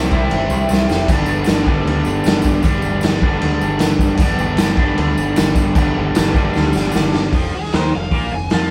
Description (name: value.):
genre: garage rock duo or trio.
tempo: 154 BPM.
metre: 4/4.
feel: straight.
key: unclear.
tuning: A4 = 443 Hz.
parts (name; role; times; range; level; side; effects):
raw garage guitar; riff; 0.0-8.7 s; F2 to F4; -21 LUFS; equal; overdrive.
growling picked electric bass; bass; 0.0-8.7 s; F1 to F2; -24 LUFS; equal; overdrive.
raw garage drum kit; drums; 0.1-8.6 s; crash cymbal, hi-hat, kick drum, snare drum; -20 LUFS; equal; none.
tambourine; percussion; 0.1-7.0 s; none; -40 LUFS; equal; none.
overdriven slide guitar; melody; 7.5-8.7 s; Ab4 to Ab5; -28 LUFS; equal; none.
room: light reverb.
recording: band playing live in one room.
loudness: -16 LUFS.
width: mono.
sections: 0.0-7.3 A section; 7.3-8.7 B section.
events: drum fill 0.7-1.1, 6.5-7.3; electric slide guitar solo 7.3-8.7.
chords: 0.0 C; 1.1 G; 7.3 N.C..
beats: 0.31 0.70 | 1.09 1.48 1.87 2.25 | 2.65 3.03 3.42 3.81 | 4.20 4.59 4.98 5.37 | 5.76 6.15 6.54 6.94 | 7.33 7.72 8.11 8.51.